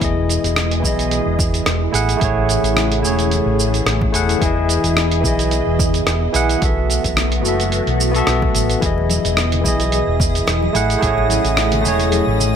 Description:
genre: sunset chillout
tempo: 109 BPM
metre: 4/4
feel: swing 55% on 16ths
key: E major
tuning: A4 = 437 Hz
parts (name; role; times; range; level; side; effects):
- barky tine electric piano; accompaniment; 0.0-12.6 s; E3 to F#5; -19 LUFS; moving between left 6 dB and right 6 dB; auto-pan, digital delay
- soft string machine; sustained chords; 0.0-12.6 s; B2 to D#5; -23 LUFS; equal; phaser, ensemble chorus
- fingered electric bass; bass; 0.0-12.6 s; E1 to B1; -20 LUFS; equal; tube saturation
- dusty soul sampler-style drum kit; drums; 0.0-12.5 s; hi-hat, rim click, shaker; -22 LUFS; right 1 dB; none
- electronic kick drum; drums; 0.0-11.1 s; none; -22 LUFS; equal; overdrive
- drifting glass-harmonics texture; texture; 9.7-12.6 s; D#5 to D#6; -27 LUFS; right 1 dB; chorus, built-in reverb
- congas; percussion; 9.0-12.5 s; none; -28 LUFS; left 4 dB; none
room: light reverb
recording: none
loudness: -14 LUFS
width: side -8 dB against mid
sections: 0.0-12.6 A section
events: none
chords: 0.0 Emaj7; 1.9 Amaj7; 4.4 Emaj7; 6.6 B7sus4; 8.8 Emaj7; 10.7 Amaj7

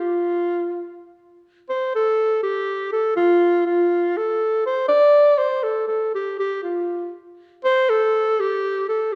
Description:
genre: andean folk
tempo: 81 BPM (dotted quarters)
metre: 6/8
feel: straight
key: unclear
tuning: A4 = 438 Hz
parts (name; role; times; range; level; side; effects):
- breathy alto saxophone; solo; 0.0-9.2 s; F4 to D5; -20 LUFS; equal; none
room: wet scoring stage reverb, RT60 1.8 s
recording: recorded in a church or concert hall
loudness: -20 LUFS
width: mono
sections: 0.0-1.4 A section; 1.4-9.2 A section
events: none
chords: none

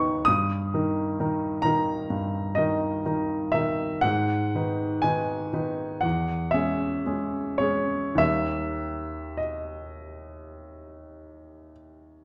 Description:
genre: classical, romantic nocturne for solo piano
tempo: 49-67 BPM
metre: 4/4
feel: rubato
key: unclear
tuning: A4 = 441 Hz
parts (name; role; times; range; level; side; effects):
- warm baby grand piano; solo; 0.0-12.2 s; D#2 to D#6; -27 LUFS; equal; none
room: wet recital hall reverb, RT60 1.5 s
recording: dark, warm production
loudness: -26 LUFS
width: mono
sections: 0.0-12.2 A section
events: none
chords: 0.3 D#/G; 4.0 G#m; 6.0 C#m/E; 8.2 D#

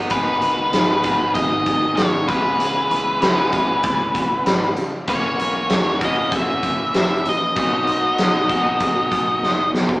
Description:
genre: indie rock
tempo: 97 BPM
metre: 4/4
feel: straight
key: unclear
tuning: A4 = 439 Hz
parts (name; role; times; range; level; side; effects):
- crunchy overdriven guitar; riff; 0.0-10.0 s; D#3 to G#4; -25 LUFS; right 1 dB; none
- electric guitar through a small old amp; riff; 0.0-10.0 s; F#2 to G#4; -28 LUFS; left 1 dB; tremolo
- picked electric bass; bass; 0.0-10.0 s; F#1 to C#3; -31 LUFS; equal; none
- octave-fuzz lead guitar; melody; 0.1-9.7 s; B4 to E5; -20 LUFS; left 1 dB; distortion
- big rock drum kit; drums; 0.1-10.0 s; hi-hat, kick drum, snare drum; -21 LUFS; equal; none
room: moderate large studio reverb, RT60 1.3 s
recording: band playing live in one room, small speaker sound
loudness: -16 LUFS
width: side -21 dB against mid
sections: 0.1-10.0 A section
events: drum fill 9.4-10.0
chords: 0.1 G#m7; 2.3 C#m7; 5.1 F#7; 7.6 Bmaj7

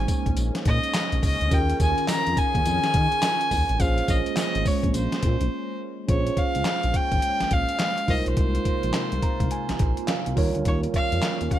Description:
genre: R&B, new jack swing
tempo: 105 BPM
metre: 4/4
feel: swing 63% on 16ths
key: Bb dorian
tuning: A4 = 440 Hz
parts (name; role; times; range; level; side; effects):
- warm fiddle; melody; 0.0-11.6 s; C5 to Bb5; -26 LUFS; left 1 dB; none
- mellow tine electric piano; accompaniment; 0.0-11.6 s; G3 to Bb5; -31 LUFS; moving between right 3 dB and right 9 dB; auto-pan
- phased analog pad; sustained chords; 0.0-11.6 s; C3 to Ab4; -32 LUFS; equal; phaser, chorus
- smooth gliding synth bass; bass; 0.0-11.5 s; Ab1 to Eb3; -26 LUFS; equal; none
- boom bap sampler-style drum kit; drums; 0.1-11.6 s; handclaps, hi-hat, kick drum, snare drum, tambourine; -25 LUFS; equal; gated reverb
room: little or no reverb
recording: none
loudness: -21 LUFS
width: side -12 dB against mid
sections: 0.0-6.1 A section; 6.1-11.6 B section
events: break 5.5-6.1; tine electric piano fill 8.9-10.7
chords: 0.0 Bbm11; 1.5 Eb9sus4; 3.8 Bbm9; 8.1 Ab6; 10.4 Eb7

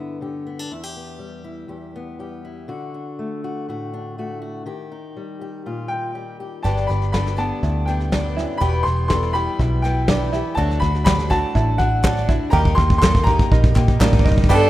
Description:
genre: indie folk with a building arrangement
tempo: 122 BPM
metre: 4/4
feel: straight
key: G major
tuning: A4 = 439 Hz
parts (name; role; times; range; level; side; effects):
- fingerpicked steel-string acoustic guitar; accompaniment; 0.0-10.6 s; E2 to G4; -30 LUFS; left 2 dB; none
- clear upright piano; melody; 5.9-13.7 s; F#5 to C6; -24 LUFS; equal; none
- picked twelve-string acoustic guitar; accompaniment; 6.6-14.7 s; E2 to G4; -27 LUFS; left 5 dB; none
- open-back banjo; arpeggios; 6.6-14.7 s; D4 to A4; -27 LUFS; right 5 dB; none
- soft brush drum kit; drums; 6.6-14.6 s; crash cymbal, kick drum, snare drum; -19 LUFS; equal; none
- vintage muted picked electric bass; bass; 6.7-14.7 s; E1 to Bb2; -20 LUFS; equal; none
- bright upright piano; accompaniment; 10.6-14.7 s; G1 to D5; -29 LUFS; equal; none
- group handclap; percussion; 11.1-14.1 s; none; -31 LUFS; right 2 dB; none
- warm fiddle; second line; 14.5-14.7 s; A4; -16 LUFS; right 4 dB; none
room: light reverb, small room ambience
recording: rough home demo mix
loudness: -17 LUFS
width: side -15 dB against mid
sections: 0.0-6.6 A section; 6.6-14.5 B section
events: build-up 6.6-14.5; drum fill 6.6-14.5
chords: 0.0 G; 0.7 Em; 2.7 D; 4.7 Eb; 6.6 G; 8.6 Em; 10.6 D; 12.5 Eb

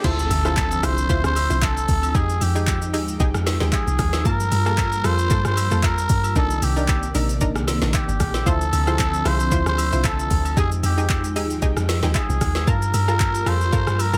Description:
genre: amapiano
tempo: 114 BPM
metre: 4/4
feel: swing 55% on 16ths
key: D phrygian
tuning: A4 = 439 Hz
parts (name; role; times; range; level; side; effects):
- trumpet with cup mute; melody; 0.0-14.2 s; G4 to C5; -27 LUFS; equal; digital delay
- string machine, cellos; sustained chords; 0.0-14.2 s; C3 to A5; -32 LUFS; equal; ensemble chorus
- analog pluck; stabs; 0.0-14.2 s; Bb3 to A5; -31 LUFS; equal; chorus, digital delay
- deep log drum bass; bass; 0.0-14.2 s; G1 to G2; -25 LUFS; equal; none
- smooth R&B drum kit; drums; 0.0-14.2 s; crash cymbal, handclaps, hi-hat, kick drum, rim click, shaker, snare drum; -26 LUFS; equal; none
- riser and impact; sound effects; 0.0-2.1 s; none; -34 LUFS; equal; none
- agogo bells and woodblock; percussion; 0.3-14.1 s; none; -36 LUFS; equal; none
room: digital ambience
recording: none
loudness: -21 LUFS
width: mono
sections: 0.0-14.2 A section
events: drop 0.0-14.2; impact 0.0-2.1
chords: 0.0 Dm9; 2.1 Fm9; 4.3 Gm9; 6.4 Cm9; 8.5 Dm9; 10.6 Fm9; 12.7 Gm9

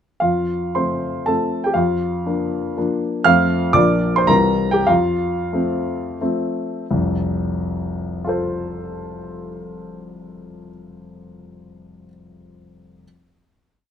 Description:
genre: classical, romantic triple-time dance for piano with dotted rhythms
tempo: 83-129 BPM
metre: 3/4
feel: rubato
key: F major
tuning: A4 = 441 Hz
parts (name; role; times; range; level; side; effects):
- warm baby grand piano; solo; 0.2-13.1 s; F1 to F6; -18 LUFS; equal; none
room: little or no reverb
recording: close, detailed microphones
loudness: -17 LUFS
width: side -8 dB against mid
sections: 0.2-6.9 A section; 6.9-10.9 final chord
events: slowing down 2.5-6.9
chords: 0.2 F; 1.8 Bb/F; 3.3 F; 3.8 Bb; 4.3 C7; 4.9 F

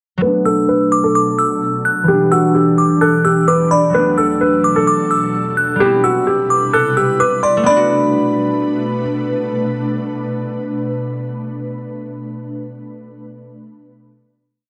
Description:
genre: hip hop, trap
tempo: 129 BPM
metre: 4/4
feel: half-time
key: B phrygian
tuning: A4 = 442 Hz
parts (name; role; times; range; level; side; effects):
- felt-muted upright piano; melody; 0.2-9.0 s; F#4 to D5; -19 LUFS; equal; low-pass filter, tape echo
- concert harp; accompaniment; 0.2-12.2 s; E3 to F#4; -21 LUFS; equal; low-pass filter
- ethereal airy pad; sustained chords; 0.5-12.1 s; E2 to B4; -25 LUFS; equal; ensemble chorus, built-in reverb, low-pass filter
- glassy synth bell; second line; 0.5-9.0 s; B5 to F#6; -20 LUFS; equal; chorus, tremolo, tape echo
room: moderate small room reverb, RT60 0.6 s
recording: none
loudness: -15 LUFS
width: mono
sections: 0.2-7.7 breakdown; 7.7-11.4 final chord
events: filter sweep 0.2-7.7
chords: 0.2 Bm7; 2.1 Em7; 3.9 Bm7; 5.8 Cmaj7; 7.7 Bm7

